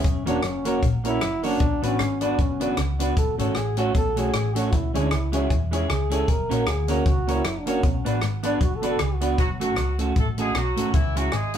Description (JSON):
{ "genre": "ska", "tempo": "154 BPM", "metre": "4/4", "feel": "swing 56% on 8ths", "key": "F# minor", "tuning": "A4 = 439 Hz", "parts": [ { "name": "breathy trombone", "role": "melody", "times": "0.0-9.3 s", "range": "C#4 to A#4", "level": "-28 LUFS", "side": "equal", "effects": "none" }, { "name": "clean electric guitar", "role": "riff", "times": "0.0-11.5 s", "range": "E2 to E3", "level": "-32 LUFS", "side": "left 2 dB", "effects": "none" }, { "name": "hollow-body short-scale fingered electric bass", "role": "bass", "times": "0.0-11.6 s", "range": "E1 to E2", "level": "-28 LUFS", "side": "equal", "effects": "none" }, { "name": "compact cocktail drum kit", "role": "drums", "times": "0.0-11.6 s", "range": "hi-hat, kick drum, rim click", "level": "-25 LUFS", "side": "left 1 dB", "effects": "none" }, { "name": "clean electric guitar", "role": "accompaniment", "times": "0.3-11.6 s", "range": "G#3 to B4", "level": "-28 LUFS", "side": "right 4 dB", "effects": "spring reverb" }, { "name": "dark upright piano", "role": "stabs", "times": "0.3-9.3 s", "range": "C#4 to D5", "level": "-30 LUFS", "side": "left 2 dB", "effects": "none" }, { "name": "mellow horn section", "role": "melody", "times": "9.4-11.6 s", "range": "E3 to A4", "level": "-28 LUFS", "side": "equal", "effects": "none" } ], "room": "moderate studio reverb, RT60 0.5 s", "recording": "band playing live in one room", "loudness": "-21 LUFS", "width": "side -9 dB against mid", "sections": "0.0-9.4 A section; 9.4-11.6 B section", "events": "trombone solo 0.0-9.4", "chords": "0.0 F#; 1.6 Bm; 3.2 F#m; 4.7 C#m; 6.3 F#; 7.8 Bm; 9.4 F#m; 10.9 C#m" }